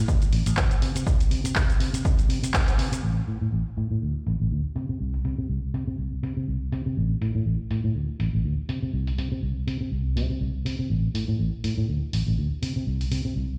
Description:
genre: filtered disco house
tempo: 122 BPM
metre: 4/4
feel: swing 55% on 16ths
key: unclear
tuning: A4 = 441 Hz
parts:
  - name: fingered electric bass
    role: bass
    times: 0.0-13.4 s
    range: A1 to C3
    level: -28 LUFS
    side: equal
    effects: sidechain pumping, low-pass filter
  - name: electronic kick drum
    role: drums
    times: 0.1-2.7 s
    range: none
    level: -25 LUFS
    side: equal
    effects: none
  - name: punchy analog drum machine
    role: drums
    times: 0.1-13.2 s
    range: crash cymbal, handclaps, hi-hat, shaker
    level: -35 LUFS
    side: equal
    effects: sidechain pumping on hats, low-pass filter on hats, sidechain pumping on perc, low-pass filter on perc, low-pass filter on snare, sidechain pumping on cymbals, low-pass filter on cymbals, low-pass filter on room
room: little or no reverb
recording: played on a big sound system in a bare room, stone room reverb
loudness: -26 LUFS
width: mono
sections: 0.0-3.0 A section; 3.0-13.6 B section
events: filter sweep on fingered electric bass 0.0-3.0, 3.0-13.6; band accent 2.5; filter sweep on drum 3.0-13.6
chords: none

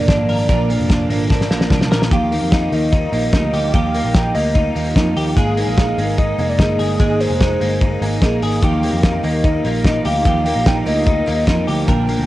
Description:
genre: jangly indie pop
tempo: 147 BPM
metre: 4/4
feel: straight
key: Eb major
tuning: A4 = 440 Hz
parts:
  - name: hollow clarinet-like synth lead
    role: melody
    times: 0.0-12.3 s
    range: C5 to G5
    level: -22 LUFS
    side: equal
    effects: chorus, phaser, cassette tape
  - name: picked twelve-string acoustic guitar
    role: accompaniment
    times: 0.0-12.3 s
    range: Bb2 to Ab4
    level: -23 LUFS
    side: right 5 dB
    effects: none
  - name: phased analog pad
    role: sustained chords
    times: 0.0-12.3 s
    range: D3 to F4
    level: -29 LUFS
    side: equal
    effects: none
  - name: direct-recorded clean electric guitar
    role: arpeggios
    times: 0.0-12.3 s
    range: Bb2 to Bb4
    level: -22 LUFS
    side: left 2 dB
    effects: ensemble chorus
  - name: vintage muted picked electric bass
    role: bass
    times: 0.0-12.3 s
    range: F1 to F2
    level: -21 LUFS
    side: equal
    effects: none
  - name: cloth-damped thuddy drum kit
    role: drums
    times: 0.1-12.2 s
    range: hi-hat, kick drum, ride cymbal, snare drum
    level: -18 LUFS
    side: equal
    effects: vintage 12-bit sampler grit, cassette tape
room: light reverb, small room ambience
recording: home recording on cassette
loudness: -14 LUFS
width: side -16 dB against mid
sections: 0.0-12.3 A section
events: drum fill 1.3-2.1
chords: 0.0 Bb; 2.1 Ebadd9; 5.4 Absus2; 8.6 Ebadd9

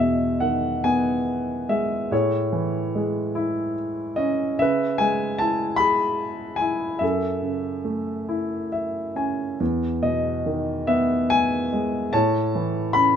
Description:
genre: classical, lyrical solo piano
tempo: 46-51 BPM (dotted quarters)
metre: 6/8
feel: rubato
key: E major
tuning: A4 = 439 Hz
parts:
  - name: warm grand piano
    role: solo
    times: 0.0-13.2 s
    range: E2 to B5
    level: -21 LUFS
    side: equal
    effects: none
room: moderate small room reverb, RT60 0.6 s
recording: none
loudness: -21 LUFS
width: side -8 dB against mid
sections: 0.0-13.2 A section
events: grand piano fill 8.3-9.6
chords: 0.0 Emaj7; 2.1 Amaj7; 4.6 C#m7; 7.0 F#m7; 9.6 Emaj7; 12.1 A

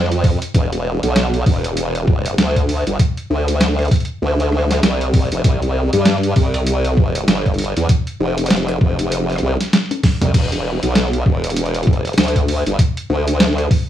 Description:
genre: glitch hop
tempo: 98 BPM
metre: 4/4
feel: swing 59% on 16ths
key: E phrygian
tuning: A4 = 440 Hz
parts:
  - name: formant-sweep wobble bass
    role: bass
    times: 0.0-13.7 s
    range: E1 to G2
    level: -17 LUFS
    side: equal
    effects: chorus, tube saturation
  - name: boom bap sampler-style drum kit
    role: drums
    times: 0.1-13.9 s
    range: crash cymbal, hi-hat, rim click, snare drum, toms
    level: -19 LUFS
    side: right 1 dB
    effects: none
  - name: electronic kick drum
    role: drums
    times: 0.2-13.9 s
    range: none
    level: -15 LUFS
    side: equal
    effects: none
room: little or no reverb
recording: studio ambience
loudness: -14 LUFS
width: side -11 dB against mid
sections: 0.0-13.9 A section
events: drum fill 9.9-10.3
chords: none

